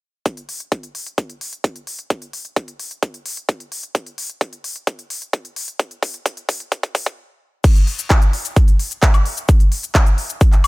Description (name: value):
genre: EDM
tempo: 130 BPM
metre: 4/4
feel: straight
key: none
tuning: none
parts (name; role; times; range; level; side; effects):
- big-room dance drum kit; drums; 0.3-10.7 s; crash cymbal, handclaps, hi-hat, shaker, woodblock; -24 LUFS; left 1 dB; overdrive
- electronic kick drum; drums; 0.3-10.5 s; none; -13 LUFS; equal; high-pass filter on kick
room: little or no reverb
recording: high-pass filter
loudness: -17 LUFS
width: side -22 dB against mid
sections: 0.3-7.6 A section; 7.6-10.7 B section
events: build-up 0.3-7.6; drum fill 3.9-7.2; drop 7.6-10.7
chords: none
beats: | 0.26 0.72 1.18 1.64 | 2.10 2.56 3.03 3.49 | 3.95 4.41 4.87 5.33 | 5.79 6.26 6.72 7.18 | 7.64 8.10 8.56 9.03 | 9.49 9.95 10.41